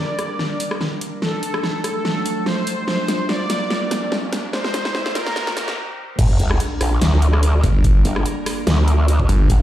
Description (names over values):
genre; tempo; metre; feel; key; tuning
heavy wobble dubstep; 145 BPM; 4/4; swing 54% on 16ths, half-time; G minor; A4 = 441 Hz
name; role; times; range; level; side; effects
soft supersaw; melody; 0.0-5.7 s; A4 to D5; -25 LUFS; equal; dub echo
evolving wavetable pad; sustained chords; 0.0-9.6 s; F3 to C5; -28 LUFS; right 1 dB; chorus, built-in reverb, sidechain pumping
riser and sub drop; sound effects; 0.7-7.8 s; none; -28 LUFS; equal; none
dubstep drum kit; drums; 0.2-9.6 s; crash cymbal, hi-hat, rim click, snare drum; -23 LUFS; equal; overdrive
growl bass; bass; 6.2-9.6 s; G1 to D2; -16 LUFS; equal; chorus, overdrive
electronic kick drum; drums; 6.2-9.6 s; none; -17 LUFS; equal; overdrive
snarling distorted saw bass; bass; 7.6-9.5 s; G1; -15 LUFS; equal; overdrive
room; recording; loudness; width
moderate digital room reverb, RT60 1.1 s; played on a big sound system in a bare room, large studio reverb, high-pass filter; -17 LUFS; side -13 dB against mid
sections
0.0-6.2 A section; 6.2-9.6 B section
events
build-up 0.0-6.2; drum fill 0.0-5.8; filter sweep 0.0-6.2; riser 0.7-5.8; break 5.8-6.2; drop 6.2-9.6; impact 6.2-7.8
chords
0.0 Gm; 1.2 D/F#; 2.9 Bb; 4.5 Cm; 6.2 Gm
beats
0.39 0.81 | 1.22 1.64 2.05 2.46 | 2.88 3.29 3.70 4.12 | 4.53 4.95 5.36 5.77 | 6.19 6.60 7.01 7.43 | 7.84 8.26 8.67 9.08 | 9.50